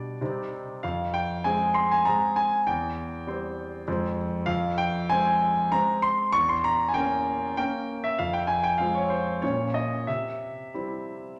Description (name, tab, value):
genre	classical-period piano sonatina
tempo	97 BPM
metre	3/4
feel	straight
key	F minor from 4.5 s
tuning	A4 = 440 Hz
part	clear grand piano	solo	0.0-11.4 s	E2 to C#6	-26 LUFS	equal	none
room	wet recital hall reverb, RT60 1.6 s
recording	none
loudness	-26 LUFS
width	mono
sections	0.0-11.4 A section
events	none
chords	0.2 Cm; 0.8 Fm; 2.7 C/E; 3.9 Fm; 6.3 Edim7; 8.2 Fm; 9.4 Bbm; 10.1 C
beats	0.21 | 0.83 1.44 2.05 | 2.67 3.27 3.88 | 4.48 5.09 5.71 | 6.32 6.94 7.56 | 8.18 8.80 9.43 | 10.08 10.74 11.39